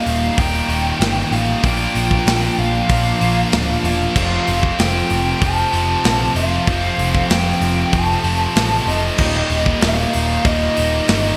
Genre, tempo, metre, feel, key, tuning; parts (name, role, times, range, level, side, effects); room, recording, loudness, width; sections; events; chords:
hard rock; 95 BPM; 4/4; straight; A4 = 440 Hz
lead guitar through a small cranked amp; melody; 0.0-11.4 s; Eb5 to A5; -24 LUFS; equal; overdrive
distorted electric guitar; riff; 0.0-11.4 s; Eb2 to Bb3; -27 LUFS; equal; distortion
heavy high-gain guitar; riff; 0.0-11.4 s; Eb2 to Bb3; -26 LUFS; equal; distortion
overdriven electric guitar; riff; 0.0-11.4 s; Eb2 to Bb4; -26 LUFS; equal
picked electric bass; bass; 0.1-11.3 s; D1 to Bb1; -24 LUFS; equal
tight metal drum kit; drums; 0.1-11.2 s; crash cymbal, hi-hat, kick drum, snare drum; -24 LUFS; equal; gated reverb
moderate lush hall reverb, RT60 1.8 s, small room ambience; bright 1980s-style digital production; -17 LUFS; mono
0.0-11.4 A section
0.0 Eb; 1.6 Bb; 4.2 F; 9.2 Eb